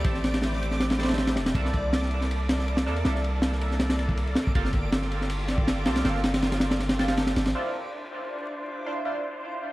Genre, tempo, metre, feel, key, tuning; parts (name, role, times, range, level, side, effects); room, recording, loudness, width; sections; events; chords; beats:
drum and bass, jungle; 160 BPM; 4/4; straight; A4 = 440 Hz
bright studio string section; sustained chords; 0.0-9.7 s; A3 to C5; -36 LUFS; equal; low-pass filter
long sustained 808-style bass; bass; 0.0-7.5 s; E1 to E2; -28 LUFS; equal
crunchy breakbeat drum kit; drums; 0.0-7.5 s; kick drum, ride cymbal, snare drum; -26 LUFS; equal
backwards swelling texture; texture; 0.0-7.6 s; D5 to D6; -38 LUFS; left 1 dB; built-in reverb
band-passed chord stab; stabs; 0.1-9.2 s; Bb3 to C5; -34 LUFS; right 2 dB; phaser, wide subtle chorus, dub echo
moderate spring reverb, RT60 1.9 s, studio reverb; echo-heavy mix, vinyl crackle; -24 LUFS; side -18 dB against mid
0.0-7.6 A section; 7.6-9.7 B section
filter sweep on string section 7.6-9.7
0.0 Am7; 1.6 C13; 4.6 Gm9; 7.6 Dm9
| 0.05 0.43 0.80 1.18 | 1.55 1.93 2.30 2.68 | 3.05 3.43 3.80 4.18 | 4.55 4.93 5.30 5.68 | 6.05 6.43 6.80 7.18 | 7.55 7.93 8.30 8.68 | 9.05 9.43